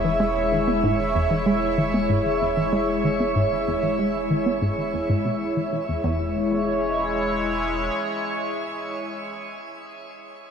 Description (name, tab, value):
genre	ambient, sequencer-driven space music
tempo	95 BPM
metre	4/4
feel	straight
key	E major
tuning	A4 = 440 Hz
part	sweeping resonant pad	sustained chords	0.0-9.3 s	G#3 to C#5	-24 LUFS	equal	chorus
part	analog pluck	riff	0.0-6.3 s	E2 to B3	-25 LUFS	equal	chorus, analog delay
part	warm sub bass	bass	0.0-7.9 s	E1	-36 LUFS	equal	none
part	bubbling stepped-filter texture	texture	0.0-6.1 s	E4 to E5	-30 LUFS	left 1 dB	chorus, built-in reverb
room	wet shimmer reverb, RT60 7.7 s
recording	none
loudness	-21 LUFS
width	side -7 dB against mid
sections	0.0-6.0 A section; 6.0-8.6 B section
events	fade-out on sub bass 0.0-6.0; filter sweep on synth arpeggio sound 0.0-6.0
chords	0.0 E6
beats	0.36 | 0.99 1.62 2.25 2.89 | 3.52 4.15 4.78 5.41 | 6.04 6.67 7.31 7.94